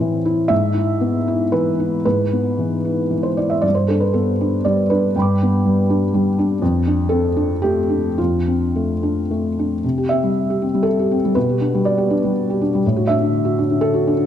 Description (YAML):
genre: neoclassical minimalist piano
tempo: 106-127 BPM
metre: 3/4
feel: rubato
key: unclear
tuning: A4 = 440 Hz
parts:
  - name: felt-muted upright piano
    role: solo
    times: 0.0-14.3 s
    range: F2 to D6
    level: -16 LUFS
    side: equal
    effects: none
room: moderate scoring stage reverb, RT60 1.5 s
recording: dark, warm production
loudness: -16 LUFS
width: side -10 dB against mid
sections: 0.0-9.8 A section; 9.8-14.3 B section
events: none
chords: 0.0 Am; 0.5 E/G#; 3.6 G; 6.6 Dm7/F; 9.8 C; 11.4 G/B; 12.8 D/A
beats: 0.01 | 0.51 1.01 1.52 | 2.04 2.58 3.11 | 3.65 4.15 4.65 | 5.14 5.63 6.13 | 6.62 7.12 7.63 | 8.19 8.75 9.30 | 9.83 10.35 10.86 | 11.36 11.85 12.34 | 12.83 13.32 13.81